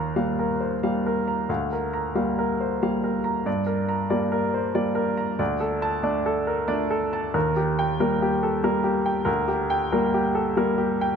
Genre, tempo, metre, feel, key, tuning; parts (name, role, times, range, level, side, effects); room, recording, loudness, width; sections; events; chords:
neoclassical minimalist piano; 93 BPM; 3/4; rubato; A4 = 438 Hz
clear grand piano; solo; 0.0-11.2 s; D2 to Bb5; -22 LUFS; equal
moderate concert hall reverb, RT60 2.5 s; -22 LUFS; side -6 dB against mid
0.0-11.2 A section
0.0 Ebadd9; 1.5 Bb6/D; 3.5 Gm; 5.4 D5; 7.3 Eb; 9.3 Bb6/D